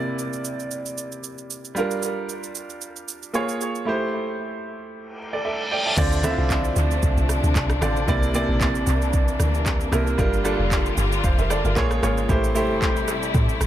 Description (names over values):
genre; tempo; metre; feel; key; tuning
amapiano; 114 BPM; 4/4; swing 55% on 16ths; G dorian; A4 = 440 Hz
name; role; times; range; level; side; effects
clear concert grand piano; accompaniment; 0.0-13.7 s; C3 to A5; -25 LUFS; right 2 dB; dub echo
downlifter and reverse cymbal; sound effects; 5.2-6.0 s; none; -29 LUFS; left 1 dB; none
afro-pop drum kit; drums; 0.2-13.7 s; crash cymbal, handclaps, kick drum, rim click, shaker; -25 LUFS; equal; dub echo
rich symphonic string section; sustained chords; 6.0-13.7 s; C3 to F4; -28 LUFS; left 2 dB; sidechain pumping
deep log drum bass; bass; 6.0-13.7 s; F1 to A2; -23 LUFS; equal; none
room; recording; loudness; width
light reverb, digital ambience; echo-heavy mix; -20 LUFS; side -12 dB against mid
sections
0.0-6.0 A section; 6.0-13.7 B section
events
reverse cymbal 5.2-6.0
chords
0.0 C9; 1.8 Gm7; 3.3 Bbm7; 3.9 Am7; 6.0 Dm7; 8.1 C9; 10.2 Gm7; 11.8 Bbm7; 12.3 Am7